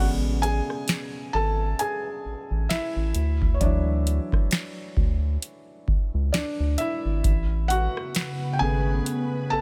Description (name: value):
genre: contemporary R&B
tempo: 66 BPM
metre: 4/4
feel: swing 58% on 16ths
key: A major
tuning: A4 = 440 Hz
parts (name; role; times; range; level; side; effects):
- felt-muted upright piano; accompaniment; 0.0-9.6 s; C#3 to A5; -30 LUFS; equal; none
- round analog bass; bass; 0.0-9.6 s; G#1 to D2; -27 LUFS; equal; none
- booming analog drum machine; drums; 0.4-9.3 s; hi-hat, kick drum, rim click, snare drum; -27 LUFS; equal; none
- ethereal airy pad; sustained chords; 7.9-9.6 s; C#3 to B4; -34 LUFS; equal; ensemble chorus, built-in reverb
room: little or no reverb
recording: none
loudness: -25 LUFS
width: mono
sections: 0.0-9.6 A section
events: felt piano solo 0.0-9.6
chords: 0.0 Amaj9; 3.2 Dmaj9; 7.2 Amaj9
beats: 0.88 1.79 2.70 | 3.61 4.51 5.42 6.33 | 7.24 8.15 9.06